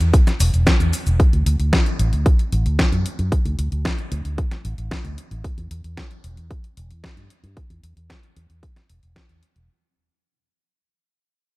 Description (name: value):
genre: italo disco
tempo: 113 BPM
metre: 4/4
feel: straight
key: D major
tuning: A4 = 439 Hz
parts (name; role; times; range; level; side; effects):
- fingered electric bass with an envelope filter; bass; 0.0-9.7 s; E1 to G2; -20 LUFS; equal; none
- detuned 8-bit digital drum machine; drums; 0.0-9.7 s; cabasa, hi-hat, snare drum; -25 LUFS; left 1 dB; none
- electronic kick drum; drums; 0.1-9.3 s; none; -18 LUFS; equal; none
room: little or no reverb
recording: none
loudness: -17 LUFS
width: side -21 dB against mid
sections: 0.0-9.7 A section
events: fade-out 0.0-9.7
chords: none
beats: 0.13 0.67 | 1.20 1.73 2.26 2.79 | 3.32 3.85 4.38 4.91 | 5.44 5.97 6.51 7.04 | 7.57 8.10 8.63 9.16